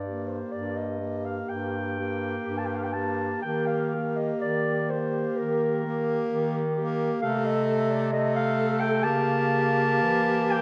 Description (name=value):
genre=classical, lyrical piece for single-reed quartet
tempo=58-66 BPM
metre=4/4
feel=rubato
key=G minor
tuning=A4 = 440 Hz
part: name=dark clarinet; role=melody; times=0.0-10.6 s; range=Bb4 to A5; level=-32 LUFS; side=equal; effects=none
part: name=mellow alto saxophone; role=second line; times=0.0-10.6 s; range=G4 to A4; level=-34 LUFS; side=equal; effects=none
part: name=clear tenor saxophone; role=accompaniment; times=0.0-10.6 s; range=A3 to Bb3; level=-32 LUFS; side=equal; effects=none
part: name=clear bass clarinet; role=bass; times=0.0-10.6 s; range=G2 to E3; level=-32 LUFS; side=equal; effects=none
room=wet scoring stage reverb, RT60 1.9 s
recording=dark, warm production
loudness=-27 LUFS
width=mono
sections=0.0-10.6 A section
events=none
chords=0.0 Gm; 3.4 Eb; 7.2 Cm6; 9.0 C#dim7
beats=0.53 1.50 2.47 | 3.44 4.44 5.38 6.31 | 7.22 8.13 9.04 10.01